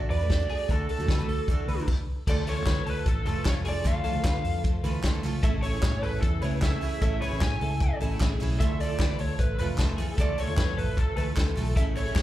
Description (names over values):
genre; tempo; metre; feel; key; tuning
jangly indie pop; 152 BPM; 4/4; straight; unclear; A4 = 439 Hz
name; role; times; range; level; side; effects
picked steel-string acoustic guitar; accompaniment; 0.0-12.2 s; D3 to A4; -35 LUFS; right 5 dB; plate reverb, slapback echo
twelve-string electric guitar; arpeggios; 0.0-12.2 s; G#4 to C#5; -38 LUFS; left 1 dB; ensemble chorus, plate reverb, slapback echo, ping-pong delay
vintage muted fingered electric bass; bass; 0.0-12.2 s; F1 to D3; -29 LUFS; equal; none
lead guitar through a small cranked amp; melody; 0.1-12.2 s; A4 to G#5; -33 LUFS; equal; overdrive, plate reverb, slapback echo, ping-pong delay
vintage drum kit; drums; 0.1-12.2 s; crash cymbal, hi-hat, kick drum, ride cymbal, snare drum; -27 LUFS; equal; none
warm analog pad; sustained chords; 2.3-12.2 s; C#3 to E5; -40 LUFS; right 1 dB; chorus, plate reverb
group handclap; percussion; 2.7-12.2 s; none; -40 LUFS; right 2 dB; none
room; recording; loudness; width
little or no reverb; live gig heard through the venue's PA, club reverb; -24 LUFS; side -14 dB against mid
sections
0.0-2.3 A section; 2.3-12.2 B section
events
none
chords
0.0 Dadd9; 2.3 Dmadd9; 5.4 Amaj7; 8.6 Dmadd9